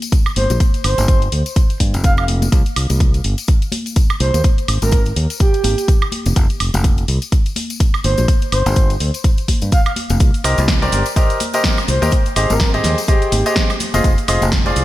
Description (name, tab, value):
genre	piano house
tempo	125 BPM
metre	4/4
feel	swing 58% on 16ths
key	unclear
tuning	A4 = 443 Hz
part	house drum kit	drums	0.0-14.8 s	hi-hat, shaker, snare drum, woodblock	-23 LUFS	right 1 dB	studio ambience, gated reverb
part	tambourine and congas	percussion	0.0-14.7 s	none	-27 LUFS	left 3 dB	none
part	electronic kick drum	drums	0.1-14.6 s	none	-14 LUFS	equal	studio ambience
part	breathy flute-like synth lead	melody	0.4-13.6 s	G4 to F5	-23 LUFS	right 1 dB	chorus, tremolo, ping-pong delay
part	fingered electric bass	bass	0.4-14.8 s	F1 to G2	-17 LUFS	equal	sidechain pumping
part	bright grand piano	riff	10.4-14.8 s	F4 to Eb5	-19 LUFS	equal	sidechain pumping, ping-pong delay
room	light reverb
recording	bright 1980s-style digital production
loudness	-13 LUFS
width	side -16 dB against mid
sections	0.0-14.8 A section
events	none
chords	0.4 G7(no3); 2.5 N.C.; 4.4 Ab5; 6.1 F5; 8.0 N.C.; 10.2 Cm7; 12.1 Abmaj7; 13.8 Fm7